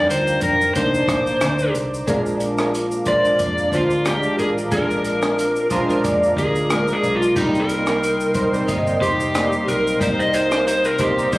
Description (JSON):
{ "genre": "indie pop, bedroom pop", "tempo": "91 BPM", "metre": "4/4", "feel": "swing 55% on 16ths", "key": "unclear", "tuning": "A4 = 440 Hz", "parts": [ { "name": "overdriven slide guitar", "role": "melody", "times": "0.0-11.4 s", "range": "Eb4 to Eb5", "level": "-20 LUFS", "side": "equal", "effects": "wide subtle chorus, tape echo" }, { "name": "flamenco guitar", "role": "accompaniment", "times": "0.0-11.4 s", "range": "Bb2 to Bb4", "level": "-24 LUFS", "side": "left 1 dB", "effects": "ensemble chorus, warbly pitch drift" }, { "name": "warm analog keys", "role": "accompaniment", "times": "0.0-11.4 s", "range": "G3 to D5", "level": "-26 LUFS", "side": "right 1 dB", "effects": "chorus, cassette tape" }, { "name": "warm analog pad", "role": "sustained chords", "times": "0.0-11.4 s", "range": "Bb4 to D6", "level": "-30 LUFS", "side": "equal", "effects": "chorus" }, { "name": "vintage muted fingered electric bass", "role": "bass", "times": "0.0-11.4 s", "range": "F1 to F2", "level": "-29 LUFS", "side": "equal", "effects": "none" }, { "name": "compact cocktail drum kit", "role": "drums", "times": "0.1-11.4 s", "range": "hi-hat, kick drum, rim click, shaker", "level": "-27 LUFS", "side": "equal", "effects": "none" }, { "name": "electric guitar through a small old amp", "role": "second line", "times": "2.1-11.4 s", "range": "G4 to Eb5", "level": "-26 LUFS", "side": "right 2 dB", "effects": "ensemble chorus, tape echo" } ], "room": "moderate studio reverb, RT60 0.5 s", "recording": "recorded on a phone in the room, club reverb", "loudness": "-17 LUFS", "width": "side -19 dB against mid", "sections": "0.0-2.1 A section; 2.1-11.4 B section", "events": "electric slide guitar solo 2.1-11.4", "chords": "0.0 Ebmaj9; 0.8 Cm9; 2.1 Bb7; 7.4 Cm7" }